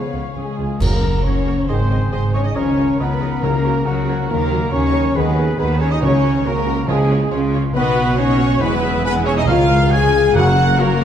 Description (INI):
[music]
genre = cinematic, heroic adventure film score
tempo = 138 BPM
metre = 4/4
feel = straight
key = F# major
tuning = A4 = 438 Hz
[part]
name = warm symphonic violin section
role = melody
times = 0.0-11.0 s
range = F#4 to G#5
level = -30 LUFS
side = left 2 dB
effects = none
[part]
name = bright silver concert flute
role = second line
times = 0.0-11.0 s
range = E#5 to G#6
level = -29 LUFS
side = equal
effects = none
[part]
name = dark clarinet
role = second line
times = 0.0-0.6 s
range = G#4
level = -39 LUFS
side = left 5 dB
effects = none
[part]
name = dark cor anglais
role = second line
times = 0.0-11.0 s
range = D#4 to C#5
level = -28 LUFS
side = right 4 dB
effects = none
[part]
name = dark symphonic violin section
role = second line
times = 0.0-11.0 s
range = F#4 to G#5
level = -30 LUFS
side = left 2 dB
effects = none
[part]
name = warm symphonic viola section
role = accompaniment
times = 0.0-11.0 s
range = C#4 to F#5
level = -28 LUFS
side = right 2 dB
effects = none
[part]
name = mellow trombone section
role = sustained chords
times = 0.0-10.5 s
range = C#3 to A#3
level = -31 LUFS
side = right 5 dB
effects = none
[part]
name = warm French horn section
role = sustained chords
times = 0.0-11.0 s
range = F#3 to G#4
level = -20 LUFS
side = left 3 dB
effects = none
[part]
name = concert harp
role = arpeggios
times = 0.0-11.0 s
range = F#2 to A#4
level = -24 LUFS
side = left 7 dB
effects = none
[part]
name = rich symphonic cello section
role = bass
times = 0.1-11.0 s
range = C#2 to D#3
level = -24 LUFS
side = right 2 dB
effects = none
[part]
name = rich symphonic double bass section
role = bass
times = 0.1-11.0 s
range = E1 to D#2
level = -22 LUFS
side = right 3 dB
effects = none
[part]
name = clear trumpet section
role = stabs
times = 0.4-11.0 s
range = B3 to G#5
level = -25 LUFS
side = right 2 dB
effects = none
[part]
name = clash cymbals and concert bass drum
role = percussion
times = 0.8-1.6 s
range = none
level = -24 LUFS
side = right 1 dB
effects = none
[part]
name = timpani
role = percussion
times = 0.8-11.0 s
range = F#2 to C#3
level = -22 LUFS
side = equal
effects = none
[sound]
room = wet recital hall reverb, RT60 1.7 s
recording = dark, warm production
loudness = -14 LUFS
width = side -9 dB against mid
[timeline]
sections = 0.8-11.0 A section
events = band accent 0.8-1.2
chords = 0.0 C#7; 0.8 F#; 1.7 G#; 2.6 C#add9; 3.4 F#/C#; 4.3 D#m; 5.2 G#m/D#; 6.0 F#/C#; 6.9 C#; 7.8 B; 8.6 E; 9.5 C#; 10.4 F#